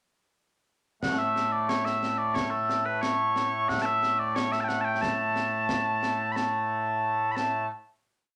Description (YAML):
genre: scottish traditional, Scottish pipe music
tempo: 90 BPM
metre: 2/4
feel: straight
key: A major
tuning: A4 = 440 Hz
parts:
  - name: mellow small bagpipes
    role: melody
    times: 1.0-7.7 s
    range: A2 to B5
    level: -28 LUFS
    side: equal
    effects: none
  - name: concert snare drum and concert bass drum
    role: drums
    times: 1.0-7.7 s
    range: none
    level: -36 LUFS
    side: equal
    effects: none
room: wet studio ambience, RT60 0.5 s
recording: none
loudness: -27 LUFS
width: mono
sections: 1.0-6.4 A section; 6.4-7.7 final note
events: none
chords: none